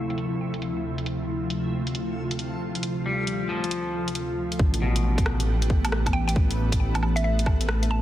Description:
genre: future garage.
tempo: 136 BPM.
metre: 4/4.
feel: swing 64% on 16ths.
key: D dorian.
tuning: A4 = 440 Hz.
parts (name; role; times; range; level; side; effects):
ethereal airy pad; sustained chords; 0.0-8.0 s; D2 to A4; -29 LUFS; equal; ensemble chorus, built-in reverb, sidechain pumping.
backwards swelling texture; texture; 0.0-8.0 s; A3 to B4; -38 LUFS; right 1 dB; built-in reverb.
garage drum kit; drums; 0.1-7.9 s; hi-hat, rim click, woodblock; -31 LUFS; equal; studio reverb, soft clipping on snare.
electric guitar at the edge of break-up; accompaniment; 3.1-5.4 s; B2 to G3; -30 LUFS; left 3 dB; sidechain pumping, ping-pong delay.
dark detuned saw bass; bass; 4.6-8.0 s; A1; -24 LUFS; equal; sidechain pumping.
electronic kick drum; drums; 4.6-7.6 s; none; -23 LUFS; equal; studio reverb.
mallet-like synth pluck; melody; 6.1-8.0 s; E5 to A5; -33 LUFS; right 1 dB; chorus, phaser, cassette tape, ping-pong delay.
room: light reverb.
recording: dense, heavily limited modern master, vinyl crackle, low-pass filter.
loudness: -23 LUFS.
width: side -13 dB against mid.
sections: 0.0-4.6 A section; 4.6-8.0 B section.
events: filter sweep on ambient pad 0.0-4.6; filter sweep 0.0-4.6.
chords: 0.0 Dm9; 4.6 Asus2.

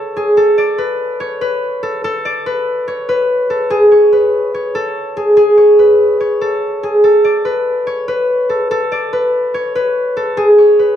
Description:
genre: hip hop.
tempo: 144 BPM.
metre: 4/4.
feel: half-time.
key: unclear.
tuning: A4 = 443 Hz.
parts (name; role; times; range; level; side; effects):
concert harp; solo; 0.0-11.0 s; G#4 to D5; -11 LUFS; equal; slapback echo.
room: light reverb.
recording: none.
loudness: -11 LUFS.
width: side -10 dB against mid.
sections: 0.4-11.0 A section.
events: none.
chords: none.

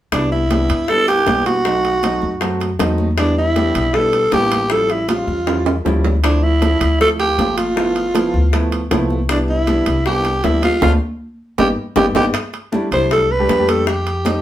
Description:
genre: Afro-Cuban jazz.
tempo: 157 BPM.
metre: 4/4.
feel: straight.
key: C major.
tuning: A4 = 440 Hz.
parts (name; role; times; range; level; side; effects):
growling alto saxophone; melody; 0.1-14.4 s; D4 to C5; -16 LUFS; right 1 dB; none.
warm concert grand piano; accompaniment; 0.1-14.4 s; F3 to G4; -22 LUFS; equal; none.
upright bass; bass; 0.1-14.4 s; G1 to G2; -20 LUFS; equal; none.
bongos; percussion; 0.1-14.4 s; none; -25 LUFS; left 5 dB; none.
congas; percussion; 0.1-14.4 s; none; -25 LUFS; equal; none.
timbales; percussion; 0.1-14.4 s; none; -25 LUFS; right 5 dB; none.
room: moderate studio reverb, RT60 0.5 s.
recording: band playing live in one room.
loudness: -14 LUFS.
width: side -12 dB against mid.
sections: 0.1-12.3 A section; 12.3-14.4 B section.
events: drum fill 5.5-6.2, 11.8-12.3; band accent 10.8-12.3.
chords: 0.1 Cmaj9; 1.7 B7b9; 3.2 Em7; 4.7 A7b13; 6.2 Dm9; 7.8 G13; 9.3 Cmaj9; 10.8 D7(no3); 11.6 Gaug; 12.3 C6; 13.9 F9.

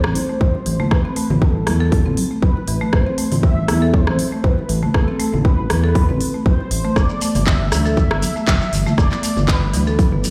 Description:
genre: afro house.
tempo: 119 BPM.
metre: 4/4.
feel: swing 54% on 16ths.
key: A minor.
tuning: A4 = 440 Hz.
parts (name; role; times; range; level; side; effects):
expressive synth lead; melody; 0.0-10.2 s; A4 to E5; -29 LUFS; equal; ensemble chorus, tape echo.
buzzing marimba with medium hard mallets; arpeggios; 0.0-10.2 s; E3 to A4; -26 LUFS; equal; sidechain pumping, tape echo.
smooth gliding synth bass; bass; 0.0-10.2 s; G1 to E2; -22 LUFS; equal; sidechain pumping.
house drum kit; drums; 0.0-10.3 s; handclaps, hi-hat, rim click, toms; -27 LUFS; equal; small room ambience.
congas; percussion; 0.2-10.3 s; none; -28 LUFS; equal; none.
electronic kick drum; drums; 0.4-10.1 s; none; -20 LUFS; equal; small room ambience.
shekere; percussion; 7.0-10.3 s; none; -34 LUFS; equal; none.
room: little or no reverb.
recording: played on a big sound system in a bare room, stone room reverb.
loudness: -17 LUFS.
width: mono.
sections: 0.0-10.3 A section.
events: none.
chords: 0.0 Amadd9; 7.0 Gadd9.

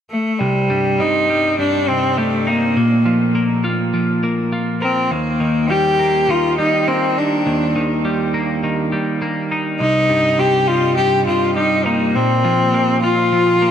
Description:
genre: rock.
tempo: 102 BPM.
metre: 4/4.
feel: straight.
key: C minor.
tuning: A4 = 440 Hz.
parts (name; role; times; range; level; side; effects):
clear cello; melody; 0.1-13.7 s; G3 to G4; -16 LUFS; left 1 dB; tape echo.
twelve-string electric guitar; arpeggios; 0.4-13.7 s; C2 to Bb4; -19 LUFS; right 1 dB; tape echo.
room: moderate huge ambient reverb, RT60 7.7 s.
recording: none.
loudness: -14 LUFS.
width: side -9 dB against mid.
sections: 0.4-13.7 A section.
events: none.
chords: 0.4 Cm; 2.8 Bb5; 5.1 Eb; 9.8 Cm; 12.2 Bbsus2.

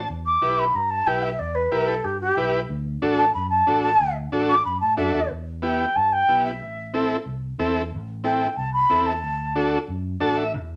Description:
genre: latin.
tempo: 184 BPM.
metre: 4/4.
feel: straight.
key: E minor.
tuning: A4 = 439 Hz.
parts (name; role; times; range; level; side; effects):
overdriven combo organ; accompaniment; 0.0-10.5 s; B3 to A5; -26 LUFS; equal; none.
fingered electric bass; bass; 0.0-10.8 s; A1 to A2; -34 LUFS; equal; none.
mellow silver concert flute; melody; 0.3-9.7 s; G4 to D6; -23 LUFS; equal; none.
room: moderate studio reverb, RT60 0.6 s.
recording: none.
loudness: -23 LUFS.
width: mono.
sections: 0.0-5.3 A section; 5.3-10.8 B section.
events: flute solo 0.0-5.3; transistor combo organ fill 10.0-10.5.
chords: 0.1 Em; 2.7 D; 5.3 Em; 6.6 Am; 9.2 D.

